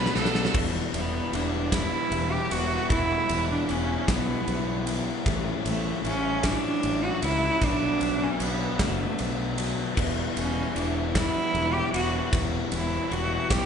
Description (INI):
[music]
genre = post-rock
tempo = 51 BPM (dotted quarters)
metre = 6/8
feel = straight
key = E dorian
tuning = A4 = 440 Hz
[part]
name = rich cello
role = melody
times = 0.0-13.7 s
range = A3 to B4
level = -28 LUFS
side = right 2 dB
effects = none
[part]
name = twelve-string electric guitar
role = arpeggios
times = 0.0-0.6 s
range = B2 to D4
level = -39 LUFS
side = left 2 dB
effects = none
[part]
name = overdriven electric guitar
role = riff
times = 0.0-13.7 s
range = A2 to E4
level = -30 LUFS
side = left 6 dB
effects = spring reverb
[part]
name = tight distorted guitar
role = riff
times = 0.0-0.5 s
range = B2 to F#4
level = -33 LUFS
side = right 8 dB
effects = distortion
[part]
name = fuzz fingered electric bass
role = bass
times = 0.0-13.7 s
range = E1 to C#2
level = -31 LUFS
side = equal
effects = overdrive
[part]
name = huge arena drum kit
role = drums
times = 0.1-13.7 s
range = crash cymbal, kick drum, ride cymbal, snare drum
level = -29 LUFS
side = right 1 dB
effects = none
[sound]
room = moderate scoring stage reverb, RT60 1.9 s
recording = recorded in a church or concert hall, nothing above 10.5 kHz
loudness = -24 LUFS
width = side -7 dB against mid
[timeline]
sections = 0.5-13.7 A section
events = drum fill 0.0-0.5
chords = 0.0 Bm7; 0.5 Em; 5.3 A5; 7.6 Bm7; 10.0 Em